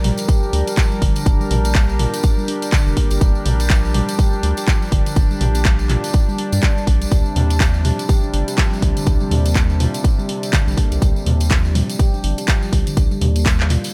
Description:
afro house; 123 BPM; 4/4; swing 59% on 16ths; G minor; A4 = 440 Hz
warm analog pad; sustained chords; 0.0-13.9 s; C3 to Bb4; -29 LUFS; equal; chorus, sidechain pumping
handpan; arpeggios; 0.0-13.8 s; D3 to G4; -28 LUFS; equal; sidechain pumping, tape echo
round analog bass; bass; 0.0-13.8 s; F1 to G2; -21 LUFS; equal; sidechain pumping
house drum kit; drums; 0.0-13.9 s; handclaps, hi-hat, toms; -26 LUFS; equal
tambourine; percussion; 0.2-13.9 s; -35 LUFS; equal
electronic kick drum; drums; 0.3-13.6 s; -18 LUFS; equal
digital ambience; -17 LUFS; mono
0.0-13.9 A section
0.0 Gm; 7.1 Cm

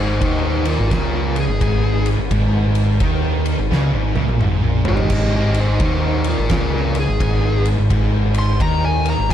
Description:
stoner and doom metal; 86 BPM; 4/4; swing 64% on 8ths; A4 = 439 Hz
fuzz lead guitar; melody; 0.0-9.3 s; Eb4 to C6; -22 LUFS; left 2 dB; distortion, slapback echo
heavy high-gain guitar; riff; 0.0-9.3 s; Ab2 to Eb3; -26 LUFS; right 1 dB; distortion
thick fuzz guitar; riff; 0.0-9.3 s; Ab2 to Eb3; -23 LUFS; left 4 dB; distortion
thick fuzz guitar; riff; 0.0-9.3 s; Ab2 to Eb3; -23 LUFS; right 6 dB; distortion
growling picked electric bass; bass; 0.0-9.3 s; Ab1 to Eb2; -22 LUFS; equal; overdrive
oversized low-tuned drum kit; drums; 0.2-9.3 s; crash cymbal, kick drum, ride cymbal, snare drum, toms; -21 LUFS; equal
light reverb, small room ambience; dark, warm production; -15 LUFS; side -10 dB against mid
0.0-9.3 A section
lead electric guitar solo 0.0-9.3; drum fill 3.7-5.1
0.0 Ab5

